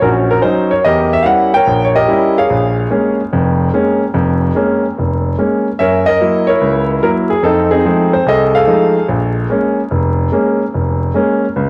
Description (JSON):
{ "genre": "solo jazz", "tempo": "146 BPM", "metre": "4/4", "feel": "swing 67% on 8ths", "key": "Bb minor", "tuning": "A4 = 440 Hz", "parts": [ { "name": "clear concert grand piano", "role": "solo", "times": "0.0-11.7 s", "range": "F1 to G5", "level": "-13 LUFS", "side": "equal", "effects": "cassette tape, analog delay" } ], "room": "moderate spring reverb, RT60 2.6 s", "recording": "home recording on cassette, vinyl crackle, nothing above 10.5 kHz", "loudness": "-13 LUFS", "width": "mono", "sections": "0.0-11.7 A section", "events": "none", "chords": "0.0 Ebm7; 0.8 Edim7; 2.5 Bbm7; 5.8 Gb7; 7.4 F7#9; 9.1 Bbm7", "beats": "0.02 0.43 | 0.84 1.25 1.67 2.08 | 2.49 2.90 3.31 3.72 | 4.14 4.55 4.96 5.37 | 5.78 6.20 6.61 7.02 | 7.43 7.85 8.26 8.67 | 9.09 9.50 9.91 10.32 | 10.74 11.15 11.56" }